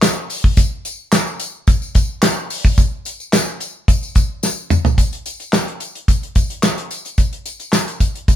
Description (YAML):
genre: funk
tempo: 109 BPM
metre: 4/4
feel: straight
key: none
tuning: none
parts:
  - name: damped 70s drum kit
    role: drums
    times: 0.0-8.4 s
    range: handclaps, hi-hat, kick drum, snare drum, toms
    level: -14 LUFS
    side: equal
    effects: none
  - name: tambourine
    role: percussion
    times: 0.0-8.4 s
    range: none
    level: -25 LUFS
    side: left 3 dB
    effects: none
room: light reverb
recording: band playing live in one room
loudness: -15 LUFS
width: side -11 dB against mid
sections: 0.0-5.0 A section; 5.0-8.4 B section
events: drum fill 4.4-5.0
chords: none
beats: 0.02 | 0.57 1.12 1.68 2.23 | 2.78 3.33 3.88 4.43 | 4.98 5.53 6.08 6.63 | 7.18 7.73 8.28